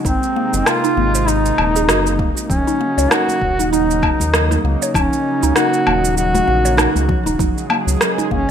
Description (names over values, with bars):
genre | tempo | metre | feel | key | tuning
organic downtempo | 98 BPM | 4/4 | swing 57% on 16ths | Eb dorian | A4 = 440 Hz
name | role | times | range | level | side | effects
warm analog pad | sustained chords | 0.0-8.5 s | C3 to Ab4 | -23 LUFS | right 1 dB | chorus, sidechain pumping
mallet-like synth pluck | arpeggios | 0.0-8.5 s | Bb3 to Db5 | -22 LUFS | right 1 dB | chorus, phaser, digital delay
round analog bass | bass | 0.0-8.5 s | Eb1 to Eb2 | -20 LUFS | equal | sidechain pumping
electronic kick drum | drums | 0.0-8.5 s | none | -21 LUFS | equal | overdrive
warm duduk | melody | 0.1-8.5 s | C4 to Gb4 | -19 LUFS | equal | digital delay
electronic shaker, rim click and woodblock | drums | 0.1-8.3 s | none | -19 LUFS | equal | overdrive, gated reverb
congas | percussion | 2.5-8.3 s | none | -28 LUFS | left 3 dB | none
room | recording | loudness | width
moderate plate reverb, RT60 2.3 s | bright 1980s-style digital production | -14 LUFS | side -8 dB against mid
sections
0.0-8.5 A section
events
none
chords
0.0 Abadd9; 2.5 Ebm7; 7.4 Gbsus2